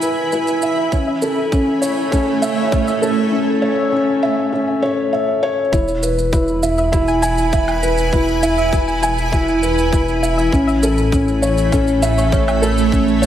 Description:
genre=piano and strings electronica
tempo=100 BPM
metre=4/4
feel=straight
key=E major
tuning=A4 = 438 Hz
part: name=granular cloud pad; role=sustained chords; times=0.0-13.3 s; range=A3 to B5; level=-22 LUFS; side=right 3 dB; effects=built-in reverb, lush chorus, sidechain pumping
part: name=felt-muted upright piano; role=riff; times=0.0-13.3 s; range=C#4 to G#5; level=-17 LUFS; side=left 1 dB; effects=tape echo
part: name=dark detuned saw bass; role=bass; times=0.0-13.3 s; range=E1 to A1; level=-21 LUFS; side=equal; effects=sidechain pumping, high-pass filter
part: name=shaker and woodblock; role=drums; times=0.0-13.3 s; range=none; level=-31 LUFS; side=right 2 dB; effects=overdrive, high-pass filter on perc, high-pass filter on room
part: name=soft round pluck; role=arpeggios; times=0.3-13.1 s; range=C#4 to G#5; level=-25 LUFS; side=right 1 dB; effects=chorus, sidechain pumping, tape echo
part: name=electronic kick drum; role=drums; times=0.9-13.0 s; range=none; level=-18 LUFS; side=equal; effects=overdrive
room=wet lush hall reverb, RT60 1.8 s, digital ambience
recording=dreamy mix soaked in reverb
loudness=-14 LUFS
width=side -10 dB against mid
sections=0.0-5.7 A section; 5.7-13.3 B section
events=build-up 0.0-5.7; drop 5.7-13.3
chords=0.0 E; 0.9 A; 5.7 E; 10.5 A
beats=0.33 | 0.93 1.53 2.13 2.73 | 3.33 3.93 4.53 5.13 | 5.73 6.33 6.93 7.53 | 8.13 8.73 9.33 9.93 | 10.53 11.13 11.73 12.33 | 12.93

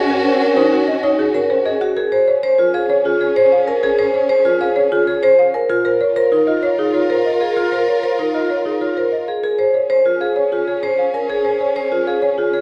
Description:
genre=classical, minimalist pattern music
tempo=193 BPM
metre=6/4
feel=straight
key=Bb minor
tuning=A4 = 444 Hz
part: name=folk marimba with medium hard mallets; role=melody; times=0.0-12.6 s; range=Ab4 to Ab5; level=-22 LUFS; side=equal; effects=none
part: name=warm studio violin section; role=sustained chords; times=0.0-12.6 s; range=Db4 to Bb4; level=-25 LUFS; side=equal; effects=none
part: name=vibraphone with medium hard mallets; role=arpeggios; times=0.0-12.6 s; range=Eb4 to C5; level=-19 LUFS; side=equal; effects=none
room=wet recital hall reverb, RT60 1.8 s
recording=dark, warm production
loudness=-16 LUFS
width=mono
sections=0.0-2.0 A section; 2.0-12.6 B section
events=none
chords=0.0 Ab9sus4 (rootless); 2.0 Bbm7; 5.7 Db69; 9.4 Bbm7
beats=| 0.10 0.41 0.72 1.03 1.35 1.66 | 1.97 2.28 2.59 2.90 3.21 3.52 | 3.83 4.14 4.45 4.76 5.08 5.39 | 5.70 6.01 6.32 6.63 6.94 7.25 | 7.56 7.87 8.19 8.50 8.81 9.12 | 9.43 9.74 10.05 10.36 10.67 10.98 | 11.29 11.61 11.92 12.23 12.54

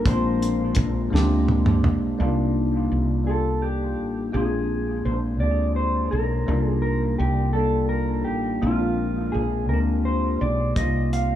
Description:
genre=slow six-eight R&B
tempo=56 BPM (dotted quarters)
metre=6/8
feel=straight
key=C minor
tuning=A4 = 440 Hz
part: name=mellow electric guitar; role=melody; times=0.0-11.4 s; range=F4 to F5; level=-28 LUFS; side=equal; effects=dub echo
part: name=tine electric piano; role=accompaniment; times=0.0-11.4 s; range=G3 to Ab4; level=-24 LUFS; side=left 1 dB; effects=phaser, dub echo
part: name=woody fretless electric bass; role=bass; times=0.1-11.4 s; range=A1 to D2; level=-24 LUFS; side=equal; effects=ensemble chorus
part: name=cloth-damped thuddy drum kit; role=drums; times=0.1-2.0, 10.8-11.3 s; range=hi-hat, kick drum, snare drum, toms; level=-23 LUFS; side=equal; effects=none
room=light reverb, small room reverb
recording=echo-heavy mix, small room ambience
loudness=-20 LUFS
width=side -11 dB against mid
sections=0.0-2.2 A section; 2.2-11.4 B section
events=drum fill 1.1-2.2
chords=0.1 Bb9; 2.2 Cm11; 4.3 Bb9; 6.5 Cm11; 8.6 Bb9; 10.8 Cm7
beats=| 0.05 1.12 | 2.19 3.27 | 4.34 5.41 | 6.48 7.55 | 8.62 9.69 | 10.77

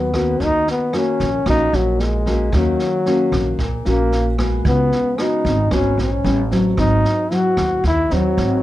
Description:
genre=bossa nova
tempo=113 BPM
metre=4/4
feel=straight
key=G# minor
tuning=A4 = 440 Hz
part: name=mellow trombone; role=melody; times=0.0-8.6 s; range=F#3 to F#4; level=-19 LUFS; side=left 1 dB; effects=none
part: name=nylon-string guitar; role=accompaniment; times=0.0-8.6 s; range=G#2 to F#4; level=-21 LUFS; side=left 1 dB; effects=none
part: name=upright bass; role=bass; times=0.0-8.6 s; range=G#1 to D#2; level=-20 LUFS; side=right 1 dB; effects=none
part: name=open jazz drum kit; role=drums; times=0.1-8.4 s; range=kick drum, rim click, snare drum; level=-26 LUFS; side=right 1 dB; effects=none
room=light reverb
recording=dark, warm production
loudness=-15 LUFS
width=side -15 dB against mid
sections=0.0-8.6 A section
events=none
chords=0.4 D#m7; 4.7 C#7sus4; 6.2 A9; 6.8 G#7b13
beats=| 0.40 0.94 1.47 2.00 | 2.53 3.06 3.59 4.12 | 4.65 5.18 5.71 6.24 | 6.78 7.30 7.84 8.37

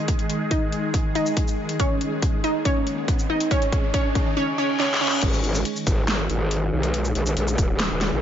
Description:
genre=heavy wobble dubstep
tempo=140 BPM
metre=4/4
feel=half-time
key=unclear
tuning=A4 = 443 Hz
part: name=wide unison pluck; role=melody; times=0.0-5.2 s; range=C#4 to D#5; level=-25 LUFS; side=right 1 dB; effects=ping-pong delay
part: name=supersaw pad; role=sustained chords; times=0.0-8.2 s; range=D#3 to G#4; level=-30 LUFS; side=equal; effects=phaser, sidechain pumping, low-pass filter
part: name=riser and reverse cymbal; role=sound effects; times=1.9-5.2 s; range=none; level=-32 LUFS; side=left 1 dB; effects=none
part: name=granular cloud pad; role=texture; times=0.0-4.4 s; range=D#4 to D#5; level=-37 LUFS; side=equal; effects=built-in reverb, sidechain pumping
part: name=dubstep drum kit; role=drums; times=0.1-8.1 s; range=crash cymbal, hi-hat, shaker, snare drum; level=-28 LUFS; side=left 1 dB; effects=high-pass filter on hats, high-pass filter on snare, high-pass filter on perc, high-pass filter on cymbals
part: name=electronic kick drum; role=drums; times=0.1-7.7 s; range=none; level=-23 LUFS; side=equal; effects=none
part: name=growl bass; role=bass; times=5.2-8.2 s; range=D#1 to B1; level=-23 LUFS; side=equal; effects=chorus, overdrive
room=light reverb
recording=nothing above 7.6 kHz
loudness=-20 LUFS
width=side -10 dB against mid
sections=0.0-5.2 A section; 5.2-8.2 B section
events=build-up 0.0-5.2; filter sweep on synth pluck 0.0-5.2; riser 1.9-4.4; drum fill 1.8-4.4, 4.8-5.2; reverse cymbal 4.4-5.2; drop 5.2-8.2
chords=0.0 G#5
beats=| 0.08 0.51 0.94 1.37 | 1.80 2.23 2.65 3.08 | 3.51 3.94 4.37 4.80 | 5.22 5.65 6.08 6.51 | 6.94 7.37 7.80

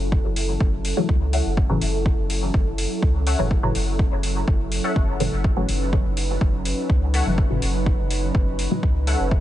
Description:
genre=dub techno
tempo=124 BPM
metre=4/4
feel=straight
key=unclear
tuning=A4 = 440 Hz
part: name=airy breathy pad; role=sustained chords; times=0.0-9.4 s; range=F#3 to B4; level=-28 LUFS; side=equal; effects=chorus, sidechain pumping
part: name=soft dub sub bass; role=bass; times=0.0-9.4 s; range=F#1 to C#2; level=-24 LUFS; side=equal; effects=sidechain pumping
part: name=electronic kick drum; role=drums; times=0.1-9.4 s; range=none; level=-20 LUFS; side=equal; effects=overdrive
part: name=electronic hi-hat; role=drums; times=0.4-9.2 s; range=none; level=-31 LUFS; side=left 1 dB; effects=overdrive
part: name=filtered dub chord stab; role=stabs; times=1.0-9.4 s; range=A2 to F#3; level=-28 LUFS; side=left 1 dB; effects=phaser, vintage 12-bit sampler grit, dub echo
part: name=warbly dusty pluck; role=riff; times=1.3-9.2 s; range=A4 to F#5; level=-32 LUFS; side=left 2 dB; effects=ensemble chorus, sidechain pumping, dub echo
room=digital ambience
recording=nothing above 10.8 kHz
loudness=-19 LUFS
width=side -13 dB against mid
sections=0.0-9.4 A section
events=none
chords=0.0 F#m7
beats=0.12 0.60 1.09 | 1.57 2.06 2.54 3.02 | 3.51 3.99 4.48 4.96 | 5.44 5.93 6.41 6.89 | 7.38 7.86 8.35 8.83 | 9.31

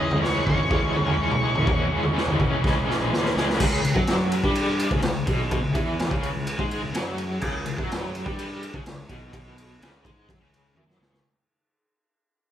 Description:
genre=psychedelic rock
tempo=126 BPM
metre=4/4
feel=straight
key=C# dorian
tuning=A4 = 441 Hz
part: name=octave-fuzz lead guitar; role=melody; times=0.0-3.1 s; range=C#5 to D#5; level=-29 LUFS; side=left 2 dB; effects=wah, distortion
part: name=tonewheel organ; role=sustained chords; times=0.0-11.2 s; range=E3 to G#5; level=-39 LUFS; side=right 3 dB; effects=none
part: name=overdriven semi-hollow guitar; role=riff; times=0.0-11.2 s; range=B2 to C#4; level=-26 LUFS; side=left 1 dB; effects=tremolo
part: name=fuzz picked electric bass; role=bass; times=0.1-11.2 s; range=G#1 to G#2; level=-31 LUFS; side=equal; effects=overdrive
part: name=raw garage drum kit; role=drums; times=0.1-11.2 s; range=crash cymbal, kick drum, ride cymbal, snare drum, toms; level=-25 LUFS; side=equal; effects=none
room=moderate large studio reverb, RT60 1.1 s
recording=band playing live in one room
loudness=-21 LUFS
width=side -10 dB against mid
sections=0.0-3.6 A section; 3.6-11.2 B section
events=drum fill 2.6-3.6, 10.7-11.2; fade-out 3.6-11.2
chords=0.0 C#m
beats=0.23 0.71 1.19 | 1.67 2.15 2.63 3.11 | 3.59 4.07 4.55 5.03 | 5.51 5.98 6.46 6.94 | 7.42 7.89 8.37 8.84 | 9.32 9.79 10.27 10.74

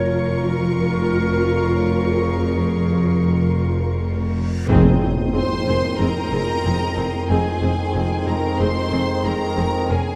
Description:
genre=cinematic, suspense film score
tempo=92 BPM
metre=4/4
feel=straight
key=F minor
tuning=A4 = 442 Hz
part: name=rich studio violin section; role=melody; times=0.0-10.2 s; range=Ab5 to Db6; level=-32 LUFS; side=equal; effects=none
part: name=clear symphonic violin section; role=second line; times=0.0-10.2 s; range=Ab4 to C5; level=-30 LUFS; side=equal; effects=none
part: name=dark clarinet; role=second line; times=0.0-4.3 s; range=Ab4 to Db5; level=-30 LUFS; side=equal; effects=none
part: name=rich symphonic viola section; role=accompaniment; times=0.0-10.0 s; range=C4 to Bb4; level=-29 LUFS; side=equal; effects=none
part: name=rich symphonic cello section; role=bass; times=0.0-10.0 s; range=F2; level=-27 LUFS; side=equal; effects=none
part: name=rich symphonic double bass section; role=bass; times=0.0-10.0 s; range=F1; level=-27 LUFS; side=equal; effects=none
part: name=deep rumbling drone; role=drone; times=0.0-10.2 s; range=F2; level=-29 LUFS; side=equal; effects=built-in reverb
part: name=rich symphonic violin section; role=texture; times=0.0-10.2 s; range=Bb5 to C7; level=-41 LUFS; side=equal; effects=none
part: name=large celesta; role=texture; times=1.7-10.2 s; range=Bb4 to Eb5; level=-39 LUFS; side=equal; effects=none
part: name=reverse cymbal and impact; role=sound effects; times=4.5-7.3 s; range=none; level=-30 LUFS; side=equal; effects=none
part: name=clear trombone section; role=sustained chords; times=4.7-10.2 s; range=F2 to F3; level=-30 LUFS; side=equal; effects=none
part: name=warm French horn section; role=sustained chords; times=4.7-10.2 s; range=Ab3 to Db4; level=-29 LUFS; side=equal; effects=none
part: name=tam-tam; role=percussion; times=4.7-7.3 s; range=none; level=-31 LUFS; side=equal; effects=none
part: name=timpani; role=percussion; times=4.7-5.6 s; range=F2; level=-28 LUFS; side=equal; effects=none
room=wet scoring stage reverb, RT60 1.8 s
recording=dark, warm production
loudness=-20 LUFS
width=mono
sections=0.0-4.7 A section; 4.7-10.2 B section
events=reverse cymbal 4.5; band accent 4.7-5.3; impact 4.7-7.3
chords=0.0 Bbm7/F; 4.7 Fm7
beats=0.12 0.77 1.42 | 2.07 2.73 3.38 4.03 | 4.68 5.33 5.99 6.64 | 7.29 7.94 8.60 9.25 | 9.90

